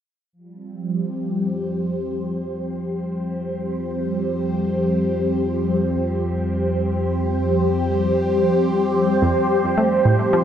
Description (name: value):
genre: ambient, sequencer-driven space music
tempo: free time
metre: none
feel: none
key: unclear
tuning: A4 = 440 Hz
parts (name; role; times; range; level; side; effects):
- phased analog pad; sustained chords; 0.6-10.4 s; F3 to C5; -20 LUFS; equal; phaser, chorus, shimmer reverb
- analog drone; bass; 1.7-9.2 s; F2; -28 LUFS; equal; chorus
- analog pluck; riff; 9.2-10.4 s; F2 to A3; -20 LUFS; right 1 dB; chorus, tape echo
room: wet huge ambient reverb, RT60 7.5 s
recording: dark, warm production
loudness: -19 LUFS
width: side -9 dB against mid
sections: 0.3-9.2 A section; 9.2-10.4 B section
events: fade-in on synth drone 0.3-9.2; filter sweep on analog synth pad 0.3-9.2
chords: 0.3 Fsus2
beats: free time